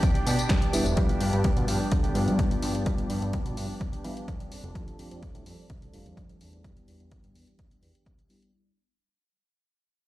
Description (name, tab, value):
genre	filtered disco house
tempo	127 BPM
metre	4/4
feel	straight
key	unclear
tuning	A4 = 440 Hz
part	reed electric piano	accompaniment	0.0-8.5 s	G3 to F4	-32 LUFS	left 1 dB	overdrive, phaser, sidechain pumping, low-pass filter
part	rich studio violin section	sustained chords	0.0-8.5 s	D4 to D5	-41 LUFS	left 1 dB	sidechain pumping, low-pass filter
part	direct-recorded clean electric guitar	riff	0.0-8.5 s	F3 to A4	-36 LUFS	right 2 dB	lush chorus, sidechain pumping, low-pass filter
part	electronic kick drum	drums	0.0-8.2 s	none	-27 LUFS	equal	overdrive
part	house drum kit	drums	0.0-8.5 s	hi-hat, snare drum, tambourine	-35 LUFS	left 1 dB	none
part	fat analog bass	bass	0.3-7.9 s	E1 to E3	-30 LUFS	equal	sidechain pumping, low-pass filter
room	light reverb, digital ambience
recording	played on a big sound system in a bare room, large studio reverb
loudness	-24 LUFS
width	side -16 dB against mid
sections	0.0-8.5 A section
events	fade-out 0.0-8.5; filter sweep 0.0-8.5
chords	0.0 Em7; 1.0 G7; 4.5 F69; 6.6 Em7